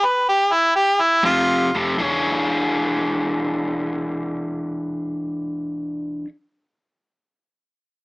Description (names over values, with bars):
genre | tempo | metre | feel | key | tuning
electric blues shuffle | 77-86 BPM | 4/4 | swing 68% on 8ths | E mixolydian | A4 = 443 Hz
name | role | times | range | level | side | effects
clear harmonica | melody | 0.0-1.7 s | E4 to B4 | -16 LUFS | equal | overdrive
biting overdriven guitar | riff | 1.2-6.3 s | F2 to C#5 | -21 LUFS | left 1 dB | none
upright bass | bass | 1.2-6.2 s | E1 to F1 | -37 LUFS | equal | none
room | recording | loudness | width
light reverb | small speaker sound | -19 LUFS | side -25 dB against mid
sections
0.0-2.0 A section; 2.0-5.1 B section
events
slowing down 0.0-2.0; harmonica solo 0.0-2.0; stop 0.0-1.2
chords
0.0 E5; 1.2 F5; 2.0 E6